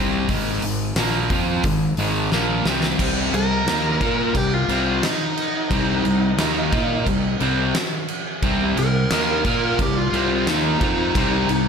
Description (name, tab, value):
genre	hard rock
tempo	88 BPM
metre	4/4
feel	straight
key	C minor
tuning	A4 = 440 Hz
part	distorted electric guitar	riff	0.0-11.7 s	Ab2 to Bb4	-24 LUFS	right 9 dB	distortion, slapback echo
part	sludgy distorted guitar	riff	0.0-11.7 s	Ab2 to Bb4	-24 LUFS	left 9 dB	overdrive
part	fuzz fingered electric bass	bass	0.0-11.7 s	Ab1 to Bb2	-26 LUFS	equal	overdrive
part	huge arena drum kit	drums	0.3-11.7 s	crash cymbal, hi-hat, kick drum, snare drum	-24 LUFS	right 1 dB	none
part	lead guitar through a small cranked amp	melody	3.3-11.7 s	Eb4 to Bb4	-24 LUFS	equal	overdrive, slapback echo
room	moderate lush hall reverb, RT60 2.1 s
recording	big arena sound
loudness	-18 LUFS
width	side -6 dB against mid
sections	0.0-3.0 A section; 3.0-11.7 B section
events	drum fill 2.3-3.0; lead electric guitar solo 3.0-11.7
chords	0.0 Ab5; 3.0 Cm